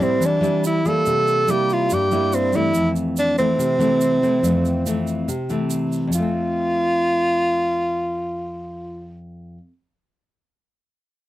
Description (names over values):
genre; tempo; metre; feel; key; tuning
bossa nova; 142 BPM; 4/4; straight; F major; A4 = 436 Hz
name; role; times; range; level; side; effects
breathy tenor saxophone; melody; 0.0-9.2 s; C4 to A4; -20 LUFS; right 1 dB; none
nylon-string guitar; accompaniment; 0.0-9.7 s; F2 to E4; -22 LUFS; left 1 dB; none
egg shaker; percussion; 0.0-6.2 s; none; -34 LUFS; right 8 dB; none
room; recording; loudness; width
light reverb; dry, close 1970s-style studio recording; -18 LUFS; side -15 dB against mid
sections
0.0-6.1 A section; 6.1-9.5 B section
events
none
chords
0.0 Am7; 1.1 C7; 2.7 Fmaj7; 6.1 F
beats
0.21 0.63 | 1.05 1.48 1.90 2.32 | 2.74 3.17 3.59 4.01 | 4.43 4.86 5.28 5.70 | 6.12 6.54 6.97 7.39 | 7.81 8.23 8.66 9.08